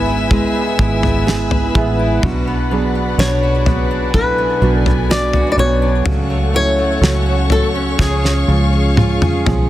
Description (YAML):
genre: pop ballad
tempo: 62 BPM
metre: 4/4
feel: straight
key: unclear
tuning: A4 = 440 Hz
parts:
  - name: flamenco guitar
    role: melody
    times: 0.0-9.4 s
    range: E4 to D5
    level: -20 LUFS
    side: left 2 dB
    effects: digital delay
  - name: felt-muted upright piano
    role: accompaniment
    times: 0.0-9.7 s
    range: G#2 to B4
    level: -20 LUFS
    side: right 5 dB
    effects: none
  - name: warm studio string section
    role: sustained chords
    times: 0.0-9.7 s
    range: D4 to E6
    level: -23 LUFS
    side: left 2 dB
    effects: none
  - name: fingerpicked steel-string acoustic guitar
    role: arpeggios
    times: 0.0-9.7 s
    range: B2 to G#4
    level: -24 LUFS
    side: left 3 dB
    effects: none
  - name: vintage muted fingered electric bass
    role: bass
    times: 0.0-9.7 s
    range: G#1 to C#2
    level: -18 LUFS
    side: equal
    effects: none
  - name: damped 70s drum kit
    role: drums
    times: 0.3-9.7 s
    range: kick drum, snare drum, toms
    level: -18 LUFS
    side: equal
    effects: none
room: light reverb, studio ambience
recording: dense, heavily limited modern master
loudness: -13 LUFS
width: side -14 dB against mid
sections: 0.0-9.7 A section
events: drum fill 8.0-9.7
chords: 0.0 E/G#; 2.2 Bm; 6.1 F#m/C#; 8.0 C#